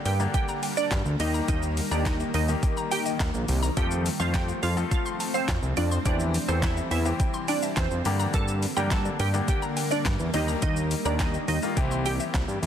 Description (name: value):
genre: dance-pop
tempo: 105 BPM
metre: 4/4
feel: straight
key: unclear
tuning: A4 = 440 Hz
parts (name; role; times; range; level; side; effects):
- granular cloud pad; sustained chords; 0.0-12.7 s; D3 to C4; -34 LUFS; equal; built-in reverb, sidechain pumping
- glassy wavetable pluck; melody; 0.1-12.5 s; C4 to A5; -31 LUFS; right 4 dB; chorus, sidechain pumping, tape echo
- mallet-like synth pluck; arpeggios; 0.1-12.4 s; Bb4 to C6; -37 LUFS; left 3 dB; chorus, sidechain pumping, tape echo
- fat analog bass; bass; 0.1-12.7 s; Bb1 to G2; -27 LUFS; equal; sidechain pumping
- smooth R&B drum kit; drums; 0.1-12.7 s; handclaps, hi-hat, kick drum, shaker, snare drum; -29 LUFS; equal; none
- clear baby grand piano; accompaniment; 0.2-12.7 s; D3 to C5; -33 LUFS; left 5 dB; sidechain pumping
room: light reverb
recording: dense, heavily limited modern master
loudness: -23 LUFS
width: side -9 dB against mid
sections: 0.0-12.7 A section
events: none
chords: 0.0 Gm; 1.2 Eb; 3.8 F; 6.1 C/E; 8.1 Gm; 10.3 Eb; 11.8 C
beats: 0.34 0.91 | 1.48 2.06 2.63 3.20 | 3.77 4.34 4.91 5.48 | 6.05 6.63 7.20 7.77 | 8.34 8.91 9.48 10.05 | 10.63 11.20 11.77 12.34